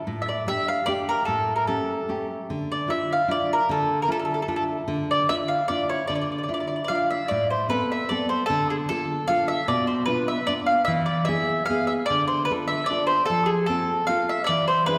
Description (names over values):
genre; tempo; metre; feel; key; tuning
italian folk; 150 BPM; 3/4; swing 54% on 8ths; D harmonic minor, A harmonic minor from 7.3 s; A4 = 438 Hz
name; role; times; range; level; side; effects
nylon-string guitar; accompaniment; 0.1-15.0 s; A2 to A4; -29 LUFS; equal; none
mandolin; melody; 0.2-15.0 s; G#4 to F5; -26 LUFS; equal; none
room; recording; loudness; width
wet concert hall reverb, RT60 2.0 s; recorded in a church or concert hall; -24 LUFS; mono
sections
0.0-7.3 A section; 7.3-15.0 B section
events
none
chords
0.1 A7sus4; 1.3 A7; 2.5 Dmadd9; 7.3 Amadd9; 8.5 Dm; 9.7 Bdim; 10.9 E; 12.1 Dm; 13.3 F